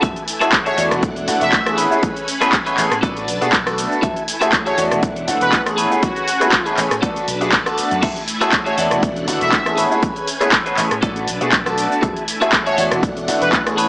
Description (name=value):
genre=filtered disco house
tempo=120 BPM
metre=4/4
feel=swing 54% on 16ths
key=A major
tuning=A4 = 440 Hz
part: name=phased string machine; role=sustained chords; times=0.0-13.9 s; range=A3 to A5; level=-27 LUFS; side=equal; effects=ensemble chorus, phaser, sidechain pumping
part: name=clean electric guitar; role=riff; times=0.0-13.9 s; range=F#4 to E5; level=-21 LUFS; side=equal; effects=phaser, sidechain pumping
part: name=vintage slap bass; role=bass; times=0.0-13.8 s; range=E1 to B2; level=-27 LUFS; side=equal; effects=sidechain pumping
part: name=electronic kick drum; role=drums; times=0.0-13.6 s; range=none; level=-22 LUFS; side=equal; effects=overdrive
part: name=punchy analog drum machine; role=drums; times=0.0-13.9 s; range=cabasa, crash cymbal, handclaps, hi-hat, rim click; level=-19 LUFS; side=equal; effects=overdrive, sidechain pumping on hats, sidechain pumping on perc, sidechain pumping on cymbals
part: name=bright grand piano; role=accompaniment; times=0.4-13.9 s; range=A3 to A4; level=-21 LUFS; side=equal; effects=phaser, sidechain pumping
part: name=analog synth brass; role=melody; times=0.7-13.6 s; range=F#4 to E5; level=-21 LUFS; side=equal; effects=chorus, sidechain pumping
room=light reverb, digital ambience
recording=dry, gritty hardware recording, cassette tape, small speaker sound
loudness=-14 LUFS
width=side -24 dB against mid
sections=0.0-13.9 A section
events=none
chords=0.0 F#m9; 0.8 E9sus4; 1.8 Amaj9; 3.0 Bm7; 4.0 F#m9; 4.8 E9sus4; 5.8 Amaj9; 7.0 Bm7; 8.0 F#m9; 8.8 E9sus4; 9.8 Amaj9; 11.0 Bm7; 12.0 F#m9; 12.8 E9sus4